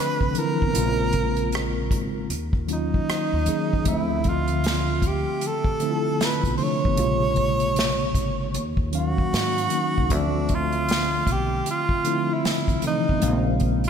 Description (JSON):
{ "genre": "R&B, neo-soul", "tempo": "77 BPM", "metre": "4/4", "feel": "swing 63% on 16ths", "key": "unclear", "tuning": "A4 = 438 Hz", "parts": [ { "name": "breathy tenor saxophone", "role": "melody", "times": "0.0-13.5 s", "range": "D4 to Db5", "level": "-26 LUFS", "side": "right 2 dB", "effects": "analog delay" }, { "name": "mellow tine electric piano", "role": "accompaniment", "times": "0.0-13.9 s", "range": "C3 to F5", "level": "-26 LUFS", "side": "equal", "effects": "medium stereo tremolo" }, { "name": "upright bass", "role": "bass", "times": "0.2-13.9 s", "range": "G1 to Eb3", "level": "-28 LUFS", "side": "equal", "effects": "none" }, { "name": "unplugged drum kit", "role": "drums", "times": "0.2-13.9 s", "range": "hi-hat, kick drum, rim click, snare drum", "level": "-26 LUFS", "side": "equal", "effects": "none" } ], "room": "moderate lush hall reverb, RT60 2.9 s", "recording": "dreamy mix soaked in reverb", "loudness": "-21 LUFS", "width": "side -7 dB against mid", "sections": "0.0-13.9 A section", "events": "none", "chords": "0.0 Dm9; 0.7 Bbm9; 2.3 Ebm9; 3.9 Dm9; 7.0 Bbm9; 8.5 Ebm9; 10.1 Dm9; 13.2 Bbm9" }